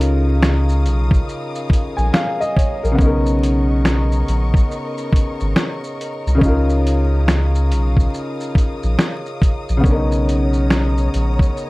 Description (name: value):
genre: lo-fi hip hop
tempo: 70 BPM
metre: 4/4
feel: swing 63% on 16ths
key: Db mixolydian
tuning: A4 = 437 Hz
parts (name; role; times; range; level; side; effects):
- warm upright piano; accompaniment; 0.0-11.7 s; Db3 to Ab5; -21 LUFS; left 1 dB; cassette tape, plate reverb
- warm studio string section; sustained chords; 0.0-11.7 s; Bb4 to Eb6; -32 LUFS; left 1 dB; plate reverb
- soft dub sub bass; bass; 0.0-11.5 s; Ab1 to Db2; -17 LUFS; equal; none
- dusty soul sampler-style drum kit; drums; 0.0-11.7 s; finger snaps, hi-hat, kick drum, shaker, snare drum; -17 LUFS; equal; none
room: light reverb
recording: dark, warm production, vinyl crackle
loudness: -15 LUFS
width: side -21 dB against mid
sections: 0.0-11.7 A section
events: none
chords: 0.0 Db69; 3.0 Cbmaj9; 6.4 Db69; 9.8 Cbmaj9